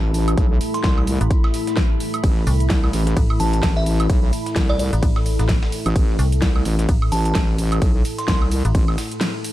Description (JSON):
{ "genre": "bass house", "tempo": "129 BPM", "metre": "4/4", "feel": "swing 58% on 16ths", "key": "A minor", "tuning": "A4 = 439 Hz", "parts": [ { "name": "dark analog pad", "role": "sustained chords", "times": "0.1-9.5 s", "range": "A3 to A4", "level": "-30 LUFS", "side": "left 1 dB", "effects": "chorus, phaser, sidechain pumping" }, { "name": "wobble bass", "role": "bass", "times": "0.0-9.0 s", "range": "A1 to C2", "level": "-20 LUFS", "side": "equal", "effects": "chorus, tube saturation, sidechain pumping" }, { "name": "deep dark ambient pad", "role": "texture", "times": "0.0-9.5 s", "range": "E4 to B5", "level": "-29 LUFS", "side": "equal", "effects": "chorus, built-in reverb, sidechain pumping" }, { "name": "big-room dance drum kit", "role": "drums", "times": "0.1-9.5 s", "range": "cabasa, hi-hat, ride cymbal, snare drum, woodblock", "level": "-27 LUFS", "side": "equal", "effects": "overdrive" }, { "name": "dusty soul sampler-style drum kit", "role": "drums", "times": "0.1-9.5 s", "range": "hi-hat, snare drum", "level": "-37 LUFS", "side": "equal", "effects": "none" }, { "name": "electronic kick drum", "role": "drums", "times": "0.4-8.9 s", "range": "none", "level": "-19 LUFS", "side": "equal", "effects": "overdrive" }, { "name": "glassy synth bell", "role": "melody", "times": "0.7-8.4 s", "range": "D5 to C6", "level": "-29 LUFS", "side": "right 2 dB", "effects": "chorus, tremolo, digital delay" }, { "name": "metallic FM bass", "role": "bass", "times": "1.2-8.7 s", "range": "A1 to C2", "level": "-19 LUFS", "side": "equal", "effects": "overdrive, sidechain pumping" } ], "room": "little or no reverb", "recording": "dark, warm production", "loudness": "-16 LUFS", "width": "side -14 dB against mid", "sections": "0.0-9.5 A section", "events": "none", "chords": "0.0 A5" }